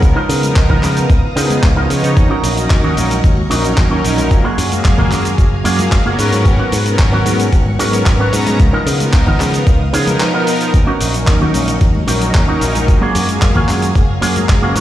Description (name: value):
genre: nu-disco, nu disco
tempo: 112 BPM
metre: 4/4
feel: straight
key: unclear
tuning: A4 = 441 Hz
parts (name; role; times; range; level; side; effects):
- warm analog pad; accompaniment; 0.0-14.8 s; F3 to Bb5; -19 LUFS; equal; chorus, tremolo, sidechain pumping, tape echo
- string machine, full ensemble; sustained chords; 0.0-14.8 s; Gb3 to Eb6; -24 LUFS; equal; ensemble chorus, sidechain pumping
- picked electric bass with an envelope filter; bass; 0.0-14.8 s; Gb1 to Db3; -17 LUFS; equal; none
- dusty soul sampler-style drum kit; drums; 0.0-14.8 s; handclaps, hi-hat, shaker; -21 LUFS; equal; none
- electronic kick drum; drums; 0.0-14.6 s; none; -12 LUFS; equal; none
- electric guitar with an envelope filter; riff; 0.2-14.8 s; Bb3 to Cb5; -20 LUFS; right 2 dB; lush chorus, tape echo
- congas; percussion; 0.4-14.5 s; none; -24 LUFS; left 2 dB; none
room: light reverb, digital ambience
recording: played on a big sound system in a bare room, stone room reverb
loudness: -11 LUFS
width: side -13 dB against mid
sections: 0.0-14.8 A section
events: none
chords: 0.0 Db13; 2.2 Ebm7; 4.3 Gbmaj9; 6.2 Abm11; 8.6 Db13; 10.7 Ebm7; 12.9 Gbmaj9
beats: | 0.03 0.56 1.10 1.63 | 2.17 2.70 3.24 3.77 | 4.31 4.85 5.38 5.92 | 6.45 6.99 7.53 8.06 | 8.60 9.13 9.67 10.20 | 10.74 11.28 11.81 12.35 | 12.88 13.42 13.95 14.49